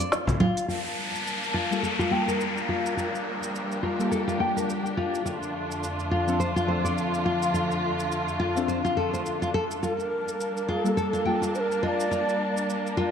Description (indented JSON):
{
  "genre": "organic downtempo",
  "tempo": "105 BPM",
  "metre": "4/4",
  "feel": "swing 57% on 16ths",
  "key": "G minor",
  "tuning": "A4 = 440 Hz",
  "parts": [
    { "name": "nylon-string guitar", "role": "arpeggios", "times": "0.0-13.1 s", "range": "F4 to G5", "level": "-29 LUFS", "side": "left 2 dB", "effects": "low-pass filter, digital delay" },
    { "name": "organic electronic drum kit", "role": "drums", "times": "0.0-13.0 s", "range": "congas, hi-hat, shaker, snare drum", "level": "-31 LUFS", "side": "right 2 dB", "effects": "small room ambience" },
    { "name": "rich studio string section", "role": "sustained chords", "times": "0.7-13.1 s", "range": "F2 to A5", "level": "-29 LUFS", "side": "equal", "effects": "none" },
    { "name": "downlifter", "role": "sound effects", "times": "0.7-5.3 s", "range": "none", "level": "-32 LUFS", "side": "left 2 dB", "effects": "none" },
    { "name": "deep mellow chord stab", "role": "accompaniment", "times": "1.7-13.1 s", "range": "F3 to A5", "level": "-31 LUFS", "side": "left 2 dB", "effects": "chorus, digital delay" },
    { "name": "mellow hollow Native American-style cedar flute", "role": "melody", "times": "9.8-12.7 s", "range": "A4 to Eb5", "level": "-29 LUFS", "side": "right 2 dB", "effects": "digital delay" }
  ],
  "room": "wet lush hall reverb, RT60 2.5 s",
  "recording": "dark, warm production",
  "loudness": "-24 LUFS",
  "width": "side -7 dB against mid",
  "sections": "0.7-13.1 A section",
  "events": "filter sweep on nylon-string guitar 0.7-13.1",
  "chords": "0.0 Dm; 0.7 Gm9; 5.3 Dm7/F; 9.8 Gm9"
}